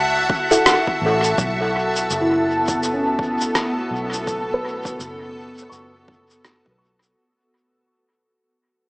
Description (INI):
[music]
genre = ambient dub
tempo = 83 BPM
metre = 4/4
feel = swing 60% on 16ths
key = F# minor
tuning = A4 = 442 Hz
[part]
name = warm clarinet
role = melody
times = 0.0-0.7 s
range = F#5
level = -26 LUFS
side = equal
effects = tape echo
[part]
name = granular cloud pad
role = sustained chords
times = 0.0-7.2 s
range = B3 to A5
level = -24 LUFS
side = equal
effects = built-in reverb
[part]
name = vintage muted fingered electric bass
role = bass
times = 0.0-7.1 s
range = F#1 to C#2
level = -30 LUFS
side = equal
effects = none
[part]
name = electronic kick drum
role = drums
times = 0.3-6.8 s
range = none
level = -28 LUFS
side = equal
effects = overdrive
[part]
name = filtered dub chord stab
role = stabs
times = 0.5-0.7 s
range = E4 to A4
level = -21 LUFS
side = equal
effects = phaser, dub echo
[part]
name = electronic shaker and rim click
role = drums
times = 0.5-7.1 s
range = none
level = -22 LUFS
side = equal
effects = overdrive, dub echo
[part]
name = bubbling stepped-filter texture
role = texture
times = 1.9-7.2 s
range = A4 to A5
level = -26 LUFS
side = equal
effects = chorus, built-in reverb
[part]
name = felt-muted upright piano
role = arpeggios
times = 2.2-7.6 s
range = C#4 to C#6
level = -25 LUFS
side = equal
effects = low-pass filter, tape echo
[sound]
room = wet echo chamber reverb, RT60 2.5 s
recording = small speaker sound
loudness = -17 LUFS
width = side -37 dB against mid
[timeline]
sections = 0.0-1.4 A section; 1.4-7.2 B section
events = fade-out 1.4-7.2; filter sweep on felt piano 1.4-7.2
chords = 0.0 F#m7